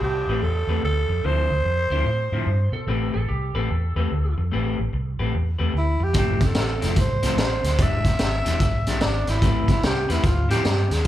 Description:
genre	electric blues shuffle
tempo	147 BPM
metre	4/4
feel	swing 64% on 8ths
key	A minor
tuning	A4 = 442 Hz
part	growling tenor saxophone	melody	0.0-2.7, 5.8-11.1 s	D4 to E5	-26 LUFS	right 1 dB	slapback echo
part	electric guitar through a small old amp	riff	0.0-10.9 s	D3 to B4	-30 LUFS	left 5 dB	slapback echo
part	vintage muted fingered electric bass	bass	0.0-11.1 s	E1 to B2	-23 LUFS	equal	none
part	electric slide guitar	second line	1.9-4.3 s	G4 to C5	-34 LUFS	right 2 dB	slapback echo, analog delay
part	raw garage drum kit	drums	6.1-11.1 s	hi-hat, kick drum, snare drum	-23 LUFS	equal	none
room	studio ambience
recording	live gig heard through the venue's PA, club ambience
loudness	-20 LUFS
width	side -13 dB against mid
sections	0.0-11.1 A section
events	none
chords	0.0 Am9; 1.2 Dm9; 2.9 Am9; 6.1 Fmaj7; 7.8 E7#9; 9.4 Am9; 10.2 Dm9

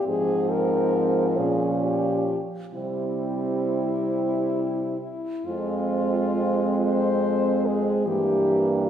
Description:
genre	classical, lyrical piece for horn quartet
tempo	45 BPM (dotted quarters)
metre	6/8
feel	uneven beats, rubato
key	F minor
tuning	A4 = 440 Hz
part	clear French horn	melody	0.0-8.9 s	E4 to C5	-26 LUFS	left 3 dB	none
part	warm French horn	second line	0.1-8.9 s	Bb3 to Db4	-29 LUFS	right 7 dB	none
part	mellow French horn	accompaniment	0.1-8.9 s	E3 to Ab3	-29 LUFS	left 1 dB	none
part	mellow French horn	bass	0.1-8.9 s	F2 to C3	-28 LUFS	right 2 dB	none
room	wet scoring stage reverb, RT60 1.9 s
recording	heard from further back in the room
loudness	-22 LUFS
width	side -9 dB against mid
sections	0.0-5.5 A section; 5.5-8.9 B section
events	none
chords	0.1 Fm/Ab; 1.4 Gdim/Bb; 2.7 C; 5.5 Fm; 8.1 Edim/G

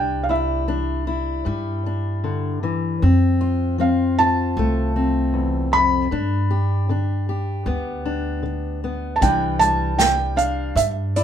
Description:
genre	acoustic folk duo or small band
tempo	77 BPM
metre	4/4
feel	straight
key	C major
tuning	A4 = 442 Hz
part	felt-muted upright piano	melody	0.0-11.2 s	D5 to B5	-20 LUFS	right 2 dB	none
part	fingerpicked steel-string acoustic guitar	accompaniment	0.0-11.2 s	E2 to G4	-23 LUFS	left 4 dB	none
part	upright bass	bass	0.0-11.2 s	C2 to G2	-23 LUFS	right 1 dB	none
part	unplugged drum kit	drums	9.2-11.2 s	hi-hat, kick drum, snare drum	-23 LUFS	right 2 dB	none
room	moderate small room ambience, RT60 0.5 s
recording	minimal, uncompressed stereo recording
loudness	-18 LUFS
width	side -9 dB against mid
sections	0.0-9.2 A section; 9.2-11.2 B section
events	felt piano solo 9.2-11.2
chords	0.0 Cadd9; 3.0 F; 6.1 G; 9.2 Cadd9

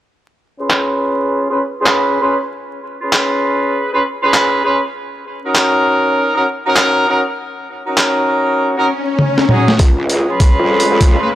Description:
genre	glitch hop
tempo	99 BPM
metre	4/4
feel	swing 63% on 16ths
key	unclear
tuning	A4 = 440 Hz
part	clear horn section	stabs	0.6-11.3 s	Db4 to Cb5	-15 LUFS	equal	sidechain pumping, low-pass filter, analog delay
part	boom bap sampler-style drum kit	drums	0.7-11.2 s	handclaps, hi-hat, snare drum, toms	-15 LUFS	equal	overdrive, high-pass filter on snare, low-pass filter on snare, studio reverb, high-pass filter on toms, low-pass filter on toms, high-pass filter on hats, low-pass filter on hats
part	swell and riser	sound effects	8.8-11.3 s	none	-20 LUFS	left 2 dB	none
part	growl bass	bass	9.8-11.2 s	Db2 to F2	-16 LUFS	equal	chorus, high-pass filter
part	electronic kick drum	drums	9.8-11.2 s	none	-9 LUFS	equal	overdrive, studio reverb
room	moderate plate reverb, RT60 2.1 s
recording	dry, gritty hardware recording, transformer saturation, vinyl crackle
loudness	-12 LUFS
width	side -13 dB against mid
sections	0.1-9.8 A section; 9.8-11.3 B section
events	filter sweep on drum 0.1-9.8; filter sweep on horn section 0.1-9.8; swell 8.8-9.8; drum fill 9.2-9.8, 9.8-11.3; build-up 9.8-11.3; riser 9.8-11.3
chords	0.1 Db7; 4.9 Ebm7; 9.8 Db7

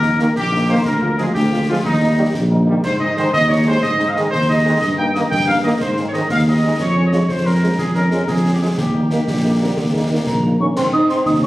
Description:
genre	military-style march for wind band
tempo	121 BPM (dotted quarters)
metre	6/8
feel	straight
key	Ab major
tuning	A4 = 441 Hz
part	mellow trumpet section	melody	0.0-11.5 s	Eb4 to G5	-20 LUFS	equal	none
part	mellow French horn section	accompaniment	0.0-11.5 s	G3 to F4	-27 LUFS	left 1 dB	none
part	dark tuba	bass	0.0-11.5 s	Bb1 to Ab2	-18 LUFS	equal	none
part	concert snare drum, concert bass drum and clash cymbals	drums	0.0-11.5 s	none	-25 LUFS	equal	none
part	mellow trombone section	sustained chords	0.2-11.5 s	C3 to Bb3	-23 LUFS	equal	none
part	mellow euphonium	second line	9.3-11.5 s	G3 to Eb4	-20 LUFS	right 1 dB	none
part	mellow wooden piccolo	second line	10.3-11.5 s	Bb5 to Eb6	-20 LUFS	equal	none
room	wet recital hall reverb, RT60 1.5 s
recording	recorded on a phone in the room, studio reverb, compression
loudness	-14 LUFS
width	side -17 dB against mid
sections	0.0-10.8 A section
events	none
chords	0.0 Eb; 0.9 Bb7/D; 1.8 Eb; 2.8 Ab; 4.8 Eb/G; 5.8 Ab; 6.8 Db/F; 8.8 Eb; 10.8 Ab

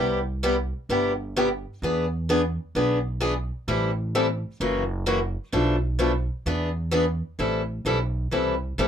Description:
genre	acoustic string swing (jazz manouche)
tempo	129 BPM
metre	4/4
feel	swing 63% on 8ths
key	A minor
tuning	A4 = 440 Hz
part	picked acoustic archtop guitar	accompaniment	0.0-8.9 s	B2 to A4	-23 LUFS	left 1 dB	none
part	upright bass	bass	0.0-8.9 s	F#1 to E2	-28 LUFS	right 1 dB	none
room	light reverb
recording	none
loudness	-23 LUFS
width	side -8 dB against mid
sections	0.0-7.4 A section; 7.4-8.9 B section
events	none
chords	0.0 Cmaj7; 1.8 E7; 3.7 Am7; 4.6 F#7; 5.5 Bm7b5; 6.5 E7; 7.4 Am7

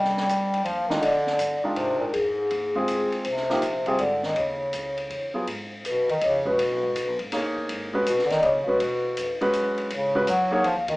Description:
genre	modal jazz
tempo	162 BPM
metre	3/4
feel	swing 66% on 8ths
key	F dorian, G# dorian from 5.5 s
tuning	A4 = 440 Hz
part	vibraphone with soft mallets	melody	0.0-11.0 s	Ab4 to G5	-24 LUFS	left 1 dB	none
part	warm bass clarinet	second line	0.0-11.0 s	Ab2 to G3	-29 LUFS	right 1 dB	none
part	upright bass	bass	0.0-11.0 s	Ab1 to Ab2	-44 LUFS	equal	none
part	open jazz drum kit	drums	0.0-10.9 s	hi-hat, kick drum, ride cymbal, snare drum	-34 LUFS	equal	none
part	warm grand piano	accompaniment	0.9-10.6 s	Eb3 to C#5	-26 LUFS	equal	none
room	light reverb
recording	band playing live in one room, small speaker sound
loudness	-22 LUFS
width	side -21 dB against mid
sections	0.0-5.5 A section; 5.5-11.0 B section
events	none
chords	0.0 Fm9; 4.4 Dbm11; 5.5 G#m11

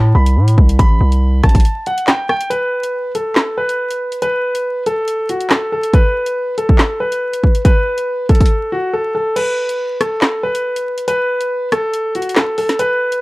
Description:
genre	hip hop, drill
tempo	140 BPM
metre	4/4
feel	half-time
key	unclear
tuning	A4 = 441 Hz
part	warm grand piano	melody	0.0-13.2 s	F#4 to B5	-17 LUFS	equal	none
part	distorted 808-style bass	bass	0.0-1.6 s	A1 to A2	-11 LUFS	equal	distortion
part	drill drum kit	drums	0.3-13.2 s	crash cymbal, handclaps, hi-hat, kick drum, rim click, snare drum	-14 LUFS	equal	none
room	little or no reverb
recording	dry, gritty hardware recording, vinyl crackle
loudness	-13 LUFS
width	side -22 dB against mid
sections	0.0-2.5 A section; 2.5-9.4 B section; 9.4-13.2 C section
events	break 1.6-2.5, 8.5-9.4, 9.4-13.2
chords	0.0 Am; 2.5 N.C.

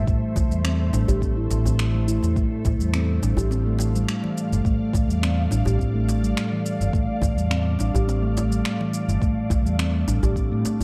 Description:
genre	organic downtempo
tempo	105 BPM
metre	4/4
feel	swing 54% on 16ths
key	unclear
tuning	A4 = 439 Hz
part	ethereal airy pad	sustained chords	0.0-10.8 s	A2 to F5	-32 LUFS	equal	ensemble chorus, built-in reverb, phaser, sidechain pumping
part	fretless electric bass	bass	0.0-10.6 s	G1 to A2	-25 LUFS	equal	ensemble chorus, sidechain pumping
part	bronze singing bowl	texture	0.0-10.8 s	none	barely audible	none	none
part	steel tongue drum	arpeggios	0.1-10.8 s	E3 to G4	-28 LUFS	equal	vintage 12-bit sampler grit, tape echo
part	electronic kick drum	drums	0.1-10.5 s	none	-27 LUFS	equal	small room ambience
part	electronic shaker and finger snaps	drums	0.1-10.8 s	none	-36 LUFS	equal	overdrive, small room ambience
part	djembe	percussion	0.4-10.8 s	none	-30 LUFS	equal	none
room	moderate lush hall reverb, RT60 2.1 s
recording	dark, warm production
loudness	-22 LUFS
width	mono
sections	0.0-10.8 A section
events	none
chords	0.0 Am; 2.4 Dm

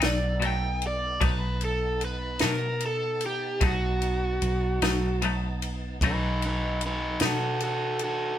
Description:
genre	slow blues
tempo	50 BPM (dotted quarters)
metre	12/8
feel	straight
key	unclear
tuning	A4 = 442 Hz
part	overdriven semi-hollow guitar	melody	0.0-8.4 s	D#4 to G5	-29 LUFS	right 1 dB	none
part	clean electric guitar	accompaniment	0.0-7.5 s	B2 to D#4	-29 LUFS	left 5 dB	tremolo
part	tonewheel organ	sustained chords	0.0-8.4 s	B3 to A5	-39 LUFS	right 2 dB	overdrive, chorus vibrato, slow rotary speaker
part	vintage muted fingered electric bass	bass	0.0-8.4 s	B1 to B2	-30 LUFS	equal	none
part	compact cocktail drum kit	drums	0.0-8.2 s	kick drum, ride cymbal, snare drum	-30 LUFS	equal	none
room	moderate studio reverb, RT60 0.7 s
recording	band playing live in one room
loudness	-25 LUFS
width	side -11 dB against mid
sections	0.0-8.4 A section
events	overdriven electric guitar solo 0.0-8.4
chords	0.0 B7

